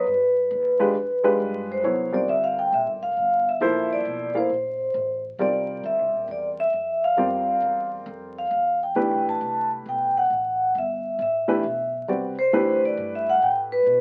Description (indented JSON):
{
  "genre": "modal jazz",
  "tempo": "135 BPM",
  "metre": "4/4",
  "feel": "swing 65% on 8ths",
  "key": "C mixolydian",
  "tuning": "A4 = 440 Hz",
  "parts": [
    { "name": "vibraphone with medium mallets", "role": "melody", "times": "0.0-14.0 s", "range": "B4 to A5", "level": "-24 LUFS", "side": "equal", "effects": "none" },
    { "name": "warm baby grand piano", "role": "accompaniment", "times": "0.0-13.8 s", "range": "E3 to F5", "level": "-28 LUFS", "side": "equal", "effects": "none" },
    { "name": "upright bass", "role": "bass", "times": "0.1-14.0 s", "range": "F1 to B2", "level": "-45 LUFS", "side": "equal", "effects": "none" }
  ],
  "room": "moderate studio reverb, RT60 0.5 s",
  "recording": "very old 78 rpm record, vinyl crackle",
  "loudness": "-23 LUFS",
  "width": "mono",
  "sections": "0.0-1.8 A section; 1.8-14.0 B section",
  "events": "none",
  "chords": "0.1 G7b9; 1.8 C13sus4; 9.0 D13sus4"
}